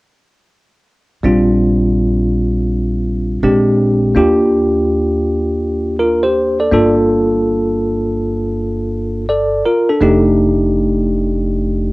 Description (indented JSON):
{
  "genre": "hip hop",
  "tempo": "82 BPM",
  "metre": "4/4",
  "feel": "swing 66% on 16ths",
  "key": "Bb major",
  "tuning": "A4 = 440 Hz",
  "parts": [
    { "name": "bell-like tine electric piano", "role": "accompaniment", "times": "1.2-11.9 s", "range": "G3 to D5", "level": "-13 LUFS", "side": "equal", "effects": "medium stereo tremolo" },
    { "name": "upright bass", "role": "bass", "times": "1.2-11.9 s", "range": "F1 to Eb2", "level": "-19 LUFS", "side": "equal", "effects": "transformer saturation" }
  ],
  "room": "moderate small room reverb, RT60 0.5 s",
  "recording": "worn, warbling old tape, cassette tape, warbly pitch drift",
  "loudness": "-12 LUFS",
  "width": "side -21 dB against mid",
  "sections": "1.2-11.9 A section",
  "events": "none",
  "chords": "1.2 Bb6; 3.4 Bb13; 4.2 Ebmaj7; 6.7 Gm9; 10.0 F13"
}